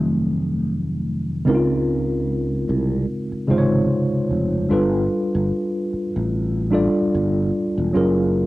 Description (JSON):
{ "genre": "R&B, neo-soul", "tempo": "74 BPM", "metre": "4/4", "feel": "swing 56% on 16ths", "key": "unclear", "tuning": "A4 = 441 Hz", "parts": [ { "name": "tine electric piano", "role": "accompaniment", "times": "0.0-8.5 s", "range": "C3 to D5", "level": "-20 LUFS", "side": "equal", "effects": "medium stereo tremolo, cassette tape" }, { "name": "sustaining fretless electric bass", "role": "bass", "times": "0.0-8.5 s", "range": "Fb1 to Db2", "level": "-23 LUFS", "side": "equal", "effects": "lush chorus" } ], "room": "light reverb", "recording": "home recording on cassette", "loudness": "-18 LUFS", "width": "side -18 dB against mid", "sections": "0.0-1.5 A section; 1.5-8.5 B section", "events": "tine electric piano solo 0.0-1.5", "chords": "0.0 F7b9; 1.5 Dbmaj13; 4.7 G9; 8.0 Gbmaj9" }